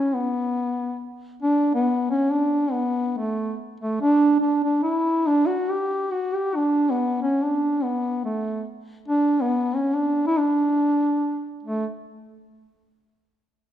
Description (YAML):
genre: alpine folk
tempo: 141 BPM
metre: 3/4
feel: rubato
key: D major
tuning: A4 = 438 Hz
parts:
  - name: dark duduk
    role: solo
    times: 0.0-11.9 s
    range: A3 to G4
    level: -21 LUFS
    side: equal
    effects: none
room: moderate recital hall reverb, RT60 1.7 s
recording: minimal, uncompressed stereo recording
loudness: -20 LUFS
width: side -11 dB against mid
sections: 0.0-1.4 A section; 1.4-11.7 B section; 11.7-12.9 C section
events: none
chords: none